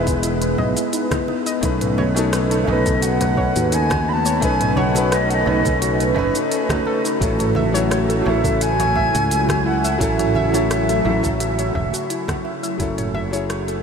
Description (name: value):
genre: sunset chillout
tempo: 86 BPM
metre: 4/4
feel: straight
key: unclear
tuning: A4 = 445 Hz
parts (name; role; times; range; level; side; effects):
- bright wooden flute; melody; 0.0-12.5 s; C#5 to B5; -24 LUFS; equal; diffuse ambient delay
- clear baby grand piano; accompaniment; 0.0-13.8 s; F#3 to B4; -24 LUFS; right 1 dB; auto-pan, diffuse ambient delay
- airy breathy pad; sustained chords; 0.0-13.8 s; C#3 to B4; -25 LUFS; equal; chorus, phaser
- soft round pluck; arpeggios; 0.0-13.8 s; D#4 to E5; -26 LUFS; left 2 dB; chorus, diffuse ambient delay
- fretless electric bass; bass; 0.0-13.8 s; E1 to D#2; -22 LUFS; equal; none
- electronic kick drum; drums; 0.1-12.9 s; none; -26 LUFS; equal; studio reverb
- smooth R&B drum kit; drums; 0.1-13.8 s; hi-hat, rim click, shaker, toms; -28 LUFS; equal; studio reverb
- congas; percussion; 0.1-13.3 s; none; -31 LUFS; right 2 dB; none
room: wet huge ambient reverb, RT60 7.7 s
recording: dreamy mix soaked in reverb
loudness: -16 LUFS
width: side -6 dB against mid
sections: 0.0-13.8 A section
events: fade-out 10.9-13.8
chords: 0.0 Emaj7; 1.6 B9; 7.2 A6; 12.8 F#m7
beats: 0.24 0.94 | 1.63 2.33 3.03 3.73 | 4.42 5.12 5.82 6.52 | 7.21 7.91 8.61 9.31 | 10.01 10.70 11.40 12.10 | 12.80 13.49